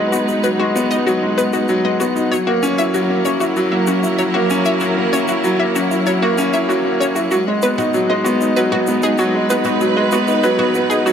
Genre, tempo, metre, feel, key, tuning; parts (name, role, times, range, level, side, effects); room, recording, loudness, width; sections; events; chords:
piano and strings electronica; 96 BPM; 4/4; straight; G# minor; A4 = 440 Hz
clear symphonic string section; sustained chords; 0.0-11.1 s; F#3 to F#5; -22 LUFS; right 2 dB; low-pass filter
analog pluck; arpeggios; 0.0-11.1 s; F#4 to E5; -22 LUFS; left 1 dB; chorus, ping-pong delay
bright upright piano; riff; 0.0-11.1 s; F#3 to E4; -16 LUFS; left 1 dB; ping-pong delay
dark detuned saw bass; bass; 0.0-11.1 s; barely audible
shaker and toms; drums; 0.1-11.1 s; -31 LUFS; right 1 dB
moderate huge ambient reverb, RT60 4.3 s; high-pass filter; -14 LUFS; side -8 dB against mid
0.0-11.1 A section
build-up 0.0-11.1
0.0 G#m7; 2.3 F#7; 7.3 G#m7